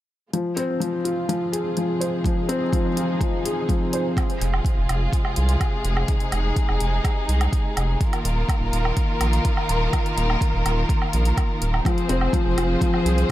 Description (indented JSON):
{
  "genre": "piano and strings electronica",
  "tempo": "125 BPM",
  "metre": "4/4",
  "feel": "straight",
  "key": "F minor",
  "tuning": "A4 = 438 Hz",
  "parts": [
    { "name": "warm studio string section", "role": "sustained chords", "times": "0.3-13.3 s", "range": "C3 to C5", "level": "-27 LUFS", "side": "left 1 dB", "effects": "sidechain pumping" },
    { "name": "felt-muted upright piano", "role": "riff", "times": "0.3-4.2, 11.9-13.3 s", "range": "F3 to C5", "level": "-23 LUFS", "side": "left 1 dB", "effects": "digital delay" },
    { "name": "electronic hi-hat and woodblock", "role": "drums", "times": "0.3-13.3 s", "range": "none", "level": "-31 LUFS", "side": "right 1 dB", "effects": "none" },
    { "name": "electronic kick drum", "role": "drums", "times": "2.2-13.3 s", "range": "none", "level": "-23 LUFS", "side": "equal", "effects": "none" },
    { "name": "round analog bass", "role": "bass", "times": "4.4-13.2 s", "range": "Eb1 to C2", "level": "-22 LUFS", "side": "equal", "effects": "tube saturation, sidechain pumping" }
  ],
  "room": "little or no reverb",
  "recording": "none",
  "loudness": "-20 LUFS",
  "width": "side -14 dB against mid",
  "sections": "0.3-4.2 A section; 4.2-13.3 B section",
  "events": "fade-in on string section 0.3-4.2",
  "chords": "0.3 Fm; 8.0 Ebsus2; 11.9 Fm",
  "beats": "| 0.33 0.81 1.29 1.77 | 2.25 2.73 3.21 3.69 | 4.17 4.65 5.13 5.61 | 6.09 6.57 7.05 7.53 | 8.01 8.49 8.97 9.45 | 9.93 10.41 10.89 11.37 | 11.85 12.33 12.81 13.29"
}